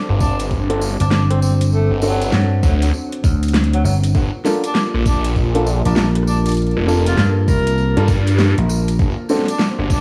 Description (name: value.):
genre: glitch hop.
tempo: 99 BPM.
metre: 4/4.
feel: swing 63% on 16ths.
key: G minor.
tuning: A4 = 440 Hz.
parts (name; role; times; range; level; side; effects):
dark analog pad; sustained chords; 0.0-10.0 s; Bb3 to C5; -28 LUFS; equal; chorus, sidechain pumping.
phased detuned saw bass; bass; 0.1-10.0 s; F1 to G2; -20 LUFS; equal; phaser.
dubstep drum kit; drums; 0.1-9.9 s; hi-hat, rim click, snare drum; -24 LUFS; equal; none.
warm tenor saxophone; melody; 0.2-10.0 s; F#3 to Bb4; -28 LUFS; equal; vintage 12-bit sampler grit, dub echo.
electronic kick drum; drums; 0.2-10.0 s; none; -20 LUFS; equal; none.
tambourine; percussion; 0.2-10.0 s; none; -37 LUFS; equal; dub echo.
warm baby grand piano; stabs; 0.7-9.5 s; Bb3 to A4; -25 LUFS; equal; vintage 12-bit sampler grit, sidechain pumping, dub echo.
vintage slap bass; bass; 1.0-9.0 s; G1 to G2; -18 LUFS; equal; none.
room: light reverb, studio ambience.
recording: echo-heavy mix, vinyl crackle, small room ambience.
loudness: -17 LUFS.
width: mono.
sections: 0.0-10.0 A section.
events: none.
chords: 0.0 D7/G; 4.1 Gm7; 9.0 D7/G.